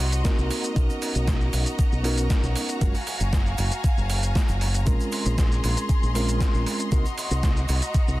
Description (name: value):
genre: nu-disco, nu disco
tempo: 117 BPM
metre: 4/4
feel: straight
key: Bb minor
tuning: A4 = 441 Hz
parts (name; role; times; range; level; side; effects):
- bright studio string section; sustained chords; 0.0-8.2 s; Gb4 to C6; -32 LUFS; left 1 dB; sidechain pumping
- fingered electric bass with an envelope filter; bass; 0.0-8.2 s; Gb1 to C2; -24 LUFS; equal; none
- dusty soul sampler-style drum kit; drums; 0.1-8.2 s; hi-hat, shaker, snare drum; -31 LUFS; right 1 dB; overdrive
- egg shaker; percussion; 0.1-8.0 s; none; -41 LUFS; right 4 dB; none
- mellow reed electric piano; accompaniment; 0.2-7.0 s; Ab3 to Bb4; -30 LUFS; right 1 dB; fast tremolo, sidechain pumping, slapback echo
- electronic kick drum; drums; 0.2-8.1 s; none; -22 LUFS; equal; overdrive
room: little or no reverb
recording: dense, heavily limited modern master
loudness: -21 LUFS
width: side -18 dB against mid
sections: 0.0-8.2 A section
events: none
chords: 0.0 Cm7b5; 0.8 Bmaj7; 2.8 Gbmaj9; 4.9 Bbm9; 6.9 Cm7b5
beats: 0.25 | 0.77 1.28 1.79 2.30 | 2.82 3.33 3.84 4.36 | 4.87 5.38 5.89 6.41 | 6.92 7.43 7.95